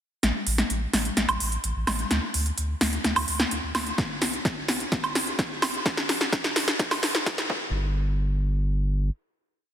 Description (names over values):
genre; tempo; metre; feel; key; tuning
EDM, festival progressive house; 128 BPM; 4/4; straight; G minor; A4 = 440 Hz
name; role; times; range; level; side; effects
saturated sub bass; bass; 0.2-9.1 s; G1 to D2; -27 LUFS; equal; sidechain pumping
big-room dance drum kit; drums; 0.2-7.5 s; hi-hat, snare drum, woodblock; -24 LUFS; equal; overdrive
electronic kick drum; drums; 4.0-7.6 s; none; -31 LUFS; equal; overdrive
room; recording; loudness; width
moderate lush hall reverb, RT60 2.1 s; dense, heavily limited modern master, high-pass filter; -23 LUFS; side -10 dB against mid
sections
0.2-7.7 build; 7.7-9.7 final hit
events
build-up 0.2-7.7; drum fill 0.2-7.7; filter sweep 0.2-7.7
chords
none